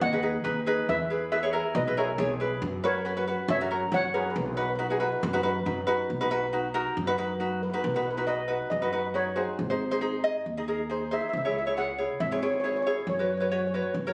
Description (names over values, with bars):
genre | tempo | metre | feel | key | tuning
calypso | 138 BPM | 4/4 | swing 54% on 16ths | B major | A4 = 440 Hz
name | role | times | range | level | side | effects
steel pan | melody | 0.0-13.9 s | G#4 to F#5 | -33 LUFS | equal | none
upright bass | bass | 0.0-14.1 s | G#1 to F#2 | -36 LUFS | equal | none
ukulele | accompaniment | 0.1-14.1 s | C#4 to D#5 | -31 LUFS | equal | none
room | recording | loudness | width
moderate studio reverb, RT60 0.5 s | recorded on a phone in the room, studio reverb, compression | -28 LUFS | mono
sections
0.0-6.1 A section; 6.1-7.8 B section; 7.8-14.1 C section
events
none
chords
0.0 G#m7; 0.9 E; 2.6 F#sus4; 3.5 F#7; 4.4 B; 9.6 G#; 11.3 C#m; 13.1 F#sus4